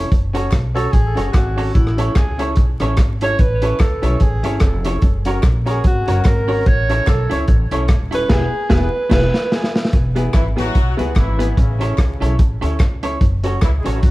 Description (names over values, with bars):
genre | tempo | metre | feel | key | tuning
ska | 147 BPM | 4/4 | swing 57% on 8ths | unclear | A4 = 440 Hz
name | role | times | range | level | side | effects
semi-hollow electric guitar | accompaniment | 0.0-14.0 s | B3 to C#5 | -27 LUFS | right 3 dB | none
warm upright piano | stabs | 0.0-14.0 s | B3 to C#5 | -25 LUFS | left 2 dB | none
upright bass | bass | 0.0-14.1 s | D#1 to D2 | -20 LUFS | equal | none
crunchy breakbeat drum kit | drums | 0.1-14.1 s | crash cymbal, hi-hat, kick drum, rim click, snare drum | -16 LUFS | equal | none
group handclap | percussion | 0.5-13.7 s | none | -37 LUFS | left 4 dB | none
warm alto saxophone | melody | 0.8-9.7 s | E4 to C#5 | -22 LUFS | right 1 dB | tape echo
dark horn section | melody | 10.3-14.1 s | C#3 to G#4 | -26 LUFS | left 1 dB | tape echo
room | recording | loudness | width
light reverb | dark, warm production, vinyl crackle | -14 LUFS | side -18 dB against mid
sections
0.0-9.9 A section; 9.9-14.1 B section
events
alto saxophone solo 0.0-9.9; band accent 8.3-9.9; drum fill 9.1-9.9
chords
0.1 F#m; 1.8 A; 5.0 F#; 6.7 A; 8.3 E; 11.6 A; 13.2 F#m